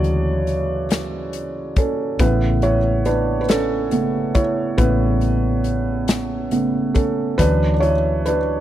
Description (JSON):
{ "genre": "six-eight pop ballad", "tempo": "46 BPM (dotted quarters)", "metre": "6/8", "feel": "straight", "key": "D major", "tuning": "A4 = 444 Hz", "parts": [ { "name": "felt-muted upright piano", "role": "accompaniment", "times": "0.0-8.6 s", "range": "C#3 to D5", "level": "-19 LUFS", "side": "right 2 dB", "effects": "none" }, { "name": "vintage muted fingered electric bass", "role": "bass", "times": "0.0-8.6 s", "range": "A1 to D2", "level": "-22 LUFS", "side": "left 1 dB", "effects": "none" }, { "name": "natural country drum kit", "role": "drums", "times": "0.0-8.5 s", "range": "hi-hat, kick drum, snare drum", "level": "-20 LUFS", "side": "left 1 dB", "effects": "none" } ], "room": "little or no reverb", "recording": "dry, close 1970s-style studio recording", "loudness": "-17 LUFS", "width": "side -12 dB against mid", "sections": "0.0-8.6 A section", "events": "felt piano solo 0.0-8.6", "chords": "0.0 Dmaj7; 2.2 Aadd9; 7.4 Dmaj7", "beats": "0.91 | 2.20 3.50 | 4.79 6.09 | 7.40" }